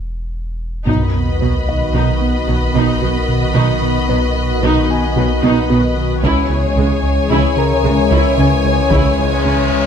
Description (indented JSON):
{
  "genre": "cinematic, hybrid orchestral and electronic film score",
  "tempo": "112 BPM",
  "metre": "5/4",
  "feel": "straight",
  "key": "unclear",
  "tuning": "A4 = 440 Hz",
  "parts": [
    { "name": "pure sine sub bass", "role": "bass", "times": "0.0-9.9 s", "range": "E1 to C#2", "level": "-20 LUFS", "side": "equal", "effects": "none" },
    { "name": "rich symphonic violin section", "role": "melody", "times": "0.9-9.9 s", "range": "G#5 to B5", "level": "-25 LUFS", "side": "left 4 dB", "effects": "none" },
    { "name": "warm symphonic violin section", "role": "second line", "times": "0.9-9.9 s", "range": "C#5 to D#5", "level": "-23 LUFS", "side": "left 4 dB", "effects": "none" },
    { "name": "warm symphonic viola section", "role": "accompaniment", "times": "0.9-9.5 s", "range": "F#3 to E4", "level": "-22 LUFS", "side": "equal", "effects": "none" },
    { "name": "hollow soft pad", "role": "sustained chords", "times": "0.9-9.9 s", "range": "C#3 to C#5", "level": "-21 LUFS", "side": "equal", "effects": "ensemble chorus" },
    { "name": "mellow French horn section", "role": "sustained chords", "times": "0.9-9.9 s", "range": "D#3 to C#4", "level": "-23 LUFS", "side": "left 5 dB", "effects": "none" },
    { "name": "harp-like synth pluck", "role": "arpeggios", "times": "0.9-9.6 s", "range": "C#3 to B4", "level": "-25 LUFS", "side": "equal", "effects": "none" },
    { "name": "smooth synth bass", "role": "riff", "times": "0.9-9.9 s", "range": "C#2 to B3", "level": "-21 LUFS", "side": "right 3 dB", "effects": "none" },
    { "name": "warm symphonic cello section", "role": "bass", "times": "0.9-9.5 s", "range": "B2 to C#3", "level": "-22 LUFS", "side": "right 4 dB", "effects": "none" },
    { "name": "warm symphonic double bass section", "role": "bass", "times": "0.9-9.5 s", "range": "B1 to C#2", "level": "-22 LUFS", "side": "right 3 dB", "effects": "none" },
    { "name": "taiko ensemble", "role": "drums", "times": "0.9-1.9, 6.2-9.4 s", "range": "none", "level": "-22 LUFS", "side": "equal", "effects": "none" },
    { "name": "sub drop and reverse cymbal", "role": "sound effects", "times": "0.9-3.5, 9.2-9.9 s", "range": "none", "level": "-23 LUFS", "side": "left 1 dB", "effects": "none" },
    { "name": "dark baby grand piano", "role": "texture", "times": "1.7-9.9 s", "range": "D#4 to A#5", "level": "-28 LUFS", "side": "left 3 dB", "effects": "digital delay" }
  ],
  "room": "light reverb",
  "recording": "close, detailed microphones",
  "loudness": "-12 LUFS",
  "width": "side -7 dB against mid",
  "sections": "0.9-9.9 A section",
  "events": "break 0.0-0.9; drum fill 0.1-0.9; impact 0.9-3.6; reverse cymbal 9.2-9.9",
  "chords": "0.0 N.C.; 0.9 B; 6.2 C#m",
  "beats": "0.34 | 0.88 1.41 1.95 2.48 3.02 | 3.56 4.09 4.63 5.16 5.70 | 6.23 6.77 7.30 7.84 8.38 | 8.91 9.45"
}